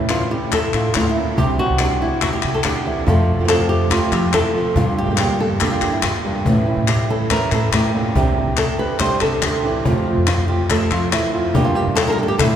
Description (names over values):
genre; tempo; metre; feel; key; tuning
flamenco; 141 BPM; 4/4; straight; unclear; A4 = 442 Hz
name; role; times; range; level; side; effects
flamenco guitar; melody; 0.0-12.6 s; G2 to C5; -19 LUFS; equal; none
flamenco guitar; stabs; 0.0-12.6 s; C3 to G4; -24 LUFS; right 3 dB; none
upright bass; bass; 0.0-12.6 s; C2 to G3; -22 LUFS; equal; none
cajon; percussion; 0.1-12.6 s; none; -24 LUFS; left 1 dB; none
palmas hand claps; percussion; 0.1-12.6 s; none; -24 LUFS; left 5 dB; none
room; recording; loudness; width
wet cathedral reverb, RT60 6.6 s; recorded in a church or concert hall; -16 LUFS; side -9 dB against mid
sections
0.0-12.6 A section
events
none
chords
0.0 A; 1.4 Csus2; 3.1 F; 4.8 Gm; 6.5 A; 8.2 Csus2; 9.9 F; 11.5 Gm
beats
0.10 0.52 0.95 | 1.37 1.79 2.22 2.64 | 3.07 3.49 3.92 4.34 | 4.77 5.19 5.62 6.04 | 6.46 6.89 7.31 7.74 | 8.16 8.59 9.01 9.43 | 9.86 10.28 10.70 11.13 | 11.55 11.97 12.39